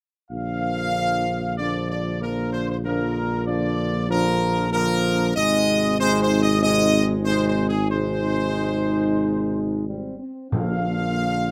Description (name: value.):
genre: classical, ceremonial fanfare.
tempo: 94 BPM.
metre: 4/4.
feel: straight.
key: Bb major.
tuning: A4 = 440 Hz.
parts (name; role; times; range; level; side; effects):
clear trumpet section; melody; 0.3-11.5 s; Ab4 to F5; -27 LUFS; equal; none.
clear trombone section; sustained chords; 0.3-11.5 s; C3 to Ab3; -31 LUFS; equal; none.
dark French horn section; sustained chords; 0.3-11.5 s; Bb3 to Eb4; -30 LUFS; equal; none.
dark tuba; bass; 0.3-11.5 s; Ab1 to Bb1; -27 LUFS; equal; none.
timpani; percussion; 10.5-11.4 s; Bb2; -30 LUFS; equal; none.
room: light reverb.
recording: close, detailed microphones.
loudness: -22 LUFS.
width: mono.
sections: 0.3-11.5 A section.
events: none.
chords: 0.3 Bb; 5.4 Ab; 10.5 Bb.